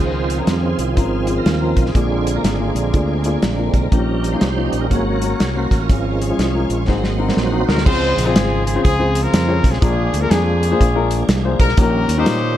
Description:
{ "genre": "uptempo gospel", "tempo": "122 BPM", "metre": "4/4", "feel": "swing 63% on 8ths", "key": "Db major", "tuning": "A4 = 436 Hz", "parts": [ { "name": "dark baby grand piano", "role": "accompaniment", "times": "0.0-12.5 s", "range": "Ab2 to Db5", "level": "-22 LUFS", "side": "left 4 dB", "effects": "none" }, { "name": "clear studio string section", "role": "sustained chords", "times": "0.0-7.9 s", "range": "Db4 to Db6", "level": "-33 LUFS", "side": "equal", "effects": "none" }, { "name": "tonewheel organ", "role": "sustained chords", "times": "0.0-12.6 s", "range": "Db3 to Db5", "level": "-22 LUFS", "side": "right 4 dB", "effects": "slow rotary speaker, overdrive, chorus vibrato" }, { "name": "modern bright fingered electric bass", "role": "bass", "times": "0.0-12.6 s", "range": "Ab1 to Bb2", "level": "-20 LUFS", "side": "equal", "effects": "none" }, { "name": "warm soul drum kit", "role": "drums", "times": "0.3-12.4 s", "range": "crash cymbal, hi-hat, kick drum, snare drum", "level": "-18 LUFS", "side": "equal", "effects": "none" }, { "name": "warm horn section", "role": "melody", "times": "7.7-12.6 s", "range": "C4 to C5", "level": "-20 LUFS", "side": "left 2 dB", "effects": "none" } ], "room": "studio reverb", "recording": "dark, warm production", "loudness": "-15 LUFS", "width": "side -12 dB against mid", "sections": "0.0-7.9 A section; 7.9-12.6 B section", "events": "tonewheel organ solo 0.0-7.9; drum fill 6.9-7.9", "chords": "0.0 Dbmaj7; 1.9 Bb7; 3.9 Eb7/Bb; 4.9 Ab9sus4; 5.9 Db/Ab; 6.9 Ab7; 7.9 Dbmaj7; 9.8 Bb7; 11.8 Eb7/Bb" }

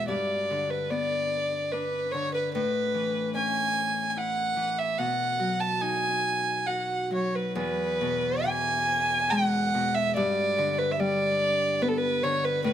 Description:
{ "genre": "celtic folk, Celtic slow air", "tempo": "72 BPM", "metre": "3/4", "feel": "rubato", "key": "unclear", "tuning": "A4 = 439 Hz", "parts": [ { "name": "dark fiddle", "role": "melody", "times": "0.0-12.7 s", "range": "A4 to A5", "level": "-26 LUFS", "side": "right 1 dB", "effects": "none" }, { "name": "Celtic harp", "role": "accompaniment", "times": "0.0-12.7 s", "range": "E2 to F#4", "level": "-30 LUFS", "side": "left 2 dB", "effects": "none" } ], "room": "light reverb", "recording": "close, detailed microphones", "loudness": "-24 LUFS", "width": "side -10 dB against mid", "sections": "0.0-7.6 A section; 7.6-12.7 A section", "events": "none", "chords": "0.1 G; 2.5 A; 5.0 B; 7.6 E; 10.2 G" }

